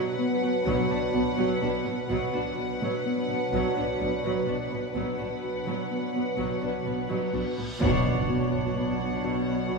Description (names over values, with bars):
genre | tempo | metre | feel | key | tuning
cinematic | 63 BPM | 3/4 | straight | B minor | A4 = 441 Hz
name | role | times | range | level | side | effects
warm studio violin section | melody | 0.0-9.8 s | F#5 | -36 LUFS | left 1 dB | none
dark studio violin section | second line | 0.0-9.8 s | B4 to C#5 | -33 LUFS | left 1 dB | none
rich studio viola section | accompaniment | 0.0-9.8 s | F#3 to D4 | -32 LUFS | right 3 dB | none
dark French horn section | sustained chords | 0.0-7.4 s | F#3 to D4 | -33 LUFS | equal | none
Celtic harp | riff | 0.0-9.8 s | B2 to B3 | -32 LUFS | left 3 dB | none
dark studio cello section | bass | 0.0-9.8 s | B2 | -34 LUFS | right 2 dB | none
rich studio double bass section | bass | 0.7-9.8 s | B1 | -34 LUFS | right 2 dB | none
reverse cymbal and impact | sound effects | 7.5-9.8 s | none | -35 LUFS | equal | none
room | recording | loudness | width
wet scoring stage reverb, RT60 1.9 s | heard from further back in the room | -25 LUFS | side -3 dB against mid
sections
0.0-7.8 A section; 7.8-9.8 B section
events
reverse cymbal 7.5; band accent 7.8-8.8; impact 7.8-9.8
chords
0.0 Bm; 7.8 Bmadd9